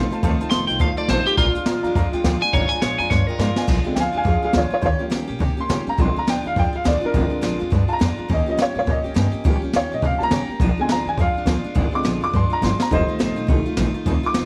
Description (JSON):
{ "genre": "rockabilly", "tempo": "208 BPM", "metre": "4/4", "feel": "swing 60% on 8ths", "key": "Bb mixolydian", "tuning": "A4 = 442 Hz", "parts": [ { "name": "picked steel-string acoustic guitar", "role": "accompaniment", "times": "0.0-14.5 s", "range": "F2 to G4", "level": "-29 LUFS", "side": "equal", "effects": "none" }, { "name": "warm upright piano", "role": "accompaniment", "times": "0.0-14.4 s", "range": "D3 to D6", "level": "-26 LUFS", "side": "equal", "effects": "none" }, { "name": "upright bass", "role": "bass", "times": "0.0-14.5 s", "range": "F1 to Db3", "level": "-25 LUFS", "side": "equal", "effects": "none" }, { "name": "jazz brush drum kit", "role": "drums", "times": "0.1-14.4 s", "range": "crash cymbal, hi-hat, kick drum, snare drum", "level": "-26 LUFS", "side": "equal", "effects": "none" }, { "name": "electric guitar at the edge of break-up", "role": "melody", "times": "0.5-3.7 s", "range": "F4 to C6", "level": "-24 LUFS", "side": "equal", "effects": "phaser, tape echo" } ], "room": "light reverb, small room ambience", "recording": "none", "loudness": "-20 LUFS", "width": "mono", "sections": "0.0-3.7 A section; 3.7-14.5 B section", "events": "drum fill 3.1-3.7, 12.6; upright piano solo 3.7-14.5", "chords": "0.0 F7; 1.4 Bb7; 4.8 Eb7; 6.0 Bb7; 8.3 Eb7; 10.6 Bb7; 12.9 F7", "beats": "| 0.23 0.52 0.80 1.09 | 1.38 1.67 1.95 2.24 | 2.53 2.82 3.10 3.39 | 3.68 3.97 4.26 4.54 | 4.83 5.12 5.41 5.70 | 5.99 6.27 6.56 6.85 | 7.14 7.43 7.72 8.00 | 8.29 8.58 8.87 9.16 | 9.45 9.73 10.02 10.31 | 10.60 10.89 11.18 11.46 | 11.75 12.04 12.33 12.62 | 12.90 13.19 13.48 13.77 | 14.06 14.34" }